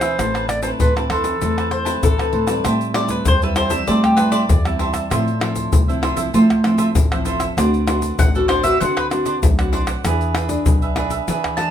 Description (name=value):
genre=samba and choro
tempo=97 BPM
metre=4/4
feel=straight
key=A minor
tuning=A4 = 442 Hz
part: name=clear clarinet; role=melody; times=0.0-2.3 s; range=A4 to D5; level=-23 LUFS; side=right 2 dB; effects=none
part: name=cavaquinho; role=accompaniment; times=0.0-11.7 s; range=D4 to A5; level=-24 LUFS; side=right 4 dB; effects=none
part: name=nylon-string guitar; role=accompaniment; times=0.0-11.7 s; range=A2 to B4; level=-24 LUFS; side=left 2 dB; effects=none
part: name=upright bass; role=bass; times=0.0-11.7 s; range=A1 to A3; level=-21 LUFS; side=right 1 dB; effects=none
part: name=tube shaker, pandeiro, tamborim and surdo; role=percussion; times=0.0-11.7 s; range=none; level=-20 LUFS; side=left 2 dB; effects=none
part: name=mandolin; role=second line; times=1.7-11.7 s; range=G4 to A5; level=-21 LUFS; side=left 2 dB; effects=none
room=light reverb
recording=minimal, uncompressed stereo recording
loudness=-15 LUFS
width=side -10 dB against mid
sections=0.0-2.7 A section; 2.7-11.7 B section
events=mandolin solo 2.7-11.7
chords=0.2 Amadd9; 2.7 Am7; 5.1 Fmaj7; 7.6 D6; 10.0 E7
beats=| 0.19 0.80 1.42 2.04 | 2.65 3.27 3.88 4.50 | 5.12 5.73 6.35 6.96 | 7.58 8.20 8.81 9.43 | 10.04 10.66 11.28